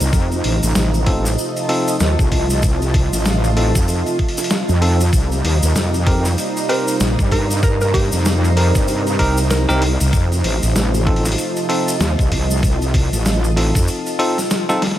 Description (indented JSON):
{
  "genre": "glitch hop",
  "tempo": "96 BPM",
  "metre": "4/4",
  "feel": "swing 60% on 16ths",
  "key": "unclear",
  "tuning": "A4 = 440 Hz",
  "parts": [
    { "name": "woody wave-folded pluck", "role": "melody", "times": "0.0-0.1, 6.7-9.8 s", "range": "F4 to C5", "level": "-25 LUFS", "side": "right 1 dB", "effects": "chorus, cassette tape, ping-pong delay" },
    { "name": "warm analog pad", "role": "sustained chords", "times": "0.0-15.0 s", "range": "C3 to F4", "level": "-26 LUFS", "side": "right 2 dB", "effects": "wide subtle chorus, sidechain pumping" },
    { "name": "wobble bass", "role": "bass", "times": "0.0-13.9 s", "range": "A1 to G2", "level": "-17 LUFS", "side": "equal", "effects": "chorus" },
    { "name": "boom bap sampler-style drum kit", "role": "drums", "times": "0.0-15.0 s", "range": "hi-hat, snare drum", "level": "-24 LUFS", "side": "left 1 dB", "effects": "overdrive" },
    { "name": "tube shaker", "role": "percussion", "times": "0.0-14.8 s", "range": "none", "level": "-27 LUFS", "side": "left 1 dB", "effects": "none" },
    { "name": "granular cloud pad", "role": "texture", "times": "0.0-15.0 s", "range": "Eb4 to Bb5", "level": "-25 LUFS", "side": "right 1 dB", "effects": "built-in reverb, sidechain pumping" },
    { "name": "electronic kick drum", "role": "drums", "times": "0.1-13.9 s", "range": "none", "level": "-18 LUFS", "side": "equal", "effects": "none" },
    { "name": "bell-like tine electric piano", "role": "stabs", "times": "1.1-14.8 s", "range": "C4 to Bb4", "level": "-22 LUFS", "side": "equal", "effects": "sidechain pumping, ping-pong delay" }
  ],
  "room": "light reverb, digital ambience",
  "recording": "none",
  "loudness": "-14 LUFS",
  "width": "side -12 dB against mid",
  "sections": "0.0-15.0 A section",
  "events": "drum fill 14.7-15.0",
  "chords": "0.1 F7; 5.1 Cm7; 10.1 F7"
}